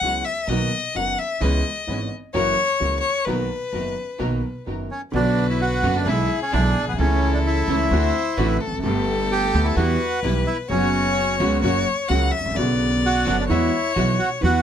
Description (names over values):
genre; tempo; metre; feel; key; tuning
tango; 129 BPM; 4/4; rubato; B major, B minor from 5.1 s; A4 = 440 Hz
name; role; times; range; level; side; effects
warm violin; second line; 0.0-14.6 s; G#4 to F#5; -25 LUFS; left 4 dB; none
warm concert grand piano; accompaniment; 0.0-14.6 s; F#1 to G#4; -24 LUFS; right 1 dB; none
dark studio string section; stabs; 0.0-14.6 s; C#3 to B4; -31 LUFS; equal; none
upright bass; bass; 0.0-14.6 s; E1 to E2; -24 LUFS; right 1 dB; none
bandoneon; melody; 4.9-14.6 s; B3 to G4; -23 LUFS; right 1 dB; none
room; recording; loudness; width
light reverb; close, detailed microphones; -19 LUFS; side -9 dB against mid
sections
0.0-5.1 A section; 5.1-14.6 B section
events
violin solo 0.0-5.1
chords
0.5 Bmaj7; 1.4 C#m7; 2.3 F#7; 3.3 Bmaj7; 5.1 Bm; 6.1 E7/B; 7.0 A/C#; 7.9 D7; 8.8 Gadd9; 9.8 Em; 10.7 F#sus4; 11.6 F#; 12.6 Bmadd9; 13.5 Eadd9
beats
0.02 0.48 0.95 | 1.41 1.87 2.34 2.80 | 3.26 3.73 4.20 4.67 | 5.13 5.60 6.06 6.53 | 6.99 7.45 7.92 8.38 | 8.84 9.30 9.77 10.23 | 10.70 11.16 11.63 12.10 | 12.56 13.03 13.50 13.96 | 14.42